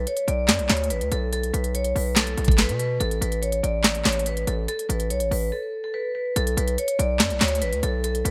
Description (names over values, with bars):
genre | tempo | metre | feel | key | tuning
hip hop, trap | 143 BPM | 4/4 | half-time | B minor | A4 = 440 Hz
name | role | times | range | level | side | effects
distorted 808-style bass | bass | 0.0-8.3 s | A1 to B2 | -28 LUFS | equal | distortion
vibraphone with hard mallets | melody | 0.1-8.3 s | A4 to D5 | -29 LUFS | equal | low-pass filter, digital delay
trap drum kit | drums | 0.1-8.3 s | handclaps, hi-hat, kick drum, snare drum | -25 LUFS | equal | overdrive
room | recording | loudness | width
moderate plate reverb, RT60 1.9 s, digital ambience | bright 1980s-style digital production | -24 LUFS | mono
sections
0.0-6.4 A section; 6.4-8.3 B section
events
break 5.5-6.4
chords
0.0 B7(no3); 3.0 N.C.; 6.4 Bm7